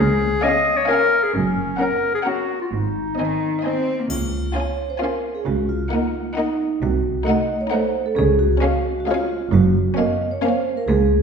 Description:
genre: cinematic, playful, whimsical film cue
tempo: 132 BPM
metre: 3/4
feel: straight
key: Db major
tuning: A4 = 440 Hz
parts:
  - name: clear clarinet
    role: second line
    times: 0.0-3.9 s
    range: Db4 to Eb5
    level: -20 LUFS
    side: left 3 dB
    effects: none
  - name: clear chamber cello section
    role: bass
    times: 0.0-11.2 s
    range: Db2 to C4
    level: -23 LUFS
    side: right 1 dB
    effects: none
  - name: warm chamber double bass section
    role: bass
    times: 0.0-11.2 s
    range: Gb1 to Db2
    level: -24 LUFS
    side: right 1 dB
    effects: none
  - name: rich chamber violin section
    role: melody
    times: 0.4-10.8 s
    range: F5 to Bb5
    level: -31 LUFS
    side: left 6 dB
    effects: none
  - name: rich chamber violin section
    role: second line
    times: 0.4-10.8 s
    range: Db4 to Gb5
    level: -28 LUFS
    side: left 3 dB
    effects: none
  - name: dark studio viola section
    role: accompaniment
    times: 0.4-10.8 s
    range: Ab3 to Db4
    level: -26 LUFS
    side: right 1 dB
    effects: none
  - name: vibraphone with medium mallets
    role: melody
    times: 4.1-11.2 s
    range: Eb4 to Eb5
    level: -23 LUFS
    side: right 4 dB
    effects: none
  - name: triangle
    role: percussion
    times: 4.1-5.0 s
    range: none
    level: -35 LUFS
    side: left 4 dB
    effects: none
room: wet scoring stage reverb, RT60 1.4 s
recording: recorded in a church or concert hall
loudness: -18 LUFS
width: side -6 dB against mid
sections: 0.0-4.1 A section; 4.1-11.2 A section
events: none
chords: 0.0 Db; 1.3 Gb; 2.7 Ab; 4.1 Db; 5.5 Ebm7/Db; 6.8 Cdim7; 8.2 Db; 9.5 Gbmaj7

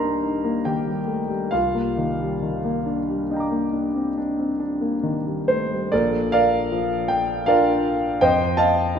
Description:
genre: classical, impressionist solo piano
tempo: 64-84 BPM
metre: 5/4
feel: rubato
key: unclear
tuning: A4 = 440 Hz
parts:
  - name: warm concert grand piano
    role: solo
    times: 0.0-9.0 s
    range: Bb1 to D6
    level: -20 LUFS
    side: equal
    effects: none
room: wet recital hall reverb, RT60 1.5 s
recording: none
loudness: -20 LUFS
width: side -7 dB against mid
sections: 0.0-5.9 A section; 5.9-9.0 B section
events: none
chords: 0.0 Cm7; 1.5 Cm11; 5.9 Bbmaj7; 8.2 F7

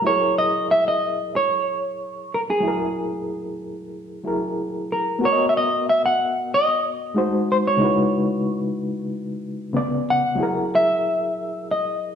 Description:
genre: soul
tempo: 93 BPM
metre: 4/4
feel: straight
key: unclear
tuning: A4 = 438 Hz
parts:
  - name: semi-hollow electric guitar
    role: melody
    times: 0.0-12.2 s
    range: G#4 to F#5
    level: -20 LUFS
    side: equal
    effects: none
  - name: reed electric piano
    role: accompaniment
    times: 0.0-12.2 s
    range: C#3 to D#5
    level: -24 LUFS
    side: left 1 dB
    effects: tremolo
room: wet stone room reverb, RT60 1.2 s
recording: band playing live in one room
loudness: -19 LUFS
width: side -8 dB against mid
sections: 0.1-12.2 A section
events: none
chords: 0.1 F#9; 5.2 Bmaj7; 7.2 G#7; 7.8 C#m11; 9.7 C#7b9; 10.4 F#9

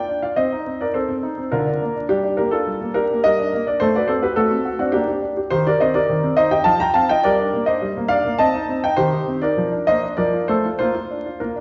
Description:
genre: classical-period piano sonatina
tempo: 104 BPM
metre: 3/4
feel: rubato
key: unclear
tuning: A4 = 440 Hz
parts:
  - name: clear grand piano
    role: solo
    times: 0.0-11.6 s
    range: D3 to Bb5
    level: -20 LUFS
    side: equal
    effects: none
room: wet recital hall reverb, RT60 1.4 s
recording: heard from further back in the room, vinyl crackle, nothing above 7.6 kHz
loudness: -20 LUFS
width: mono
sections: 0.0-11.6 A section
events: none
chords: 0.4 Adim/C; 1.5 Bb/D; 2.1 Gm; 3.8 F#dim/A; 4.9 Gm/Bb; 5.5 Cm/Eb; 6.7 F5; 7.2 Gm; 8.4 Cm; 9.0 Cm/Eb; 9.6 Bb/F; 10.2 F; 10.8 Bb

